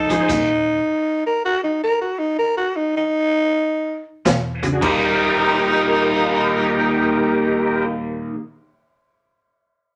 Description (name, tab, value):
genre	electric blues shuffle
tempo	106 BPM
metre	4/4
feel	swing 66% on 8ths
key	Eb major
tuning	A4 = 439 Hz
part	growling tenor saxophone	melody	0.0-4.1 s	Eb4 to Bb4	-20 LUFS	equal	none
part	mellow harmonica	second line	0.0-0.3, 4.8-7.9 s	Eb4 to A4	-26 LUFS	equal	overdrive
part	biting overdriven guitar	riff	0.0-0.8, 4.3-8.4 s	Eb2 to Eb4	-23 LUFS	equal	phaser
part	upright bass	bass	0.0-0.8, 4.3-8.2 s	Eb1 to E2	-37 LUFS	equal	none
part	bright tonewheel organ	accompaniment	0.1-0.3, 4.6-7.9 s	D4 to C5	-22 LUFS	equal	slow rotary speaker, chorus vibrato
part	raw garage drum kit	drums	0.1-0.5, 4.3-5.0 s	crash cymbal, hi-hat, kick drum, snare drum	-27 LUFS	equal	none
room	wet studio reverb, RT60 0.7 s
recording	none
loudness	-19 LUFS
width	mono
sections	0.0-4.8 A section; 4.8-7.1 B section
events	stop 0.3-4.3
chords	0.3 Eb5; 4.3 E7; 4.8 Eb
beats	| 0.29 0.86 1.43 1.99 | 2.56 3.12 3.69 4.26 | 4.83 5.39 5.96 6.52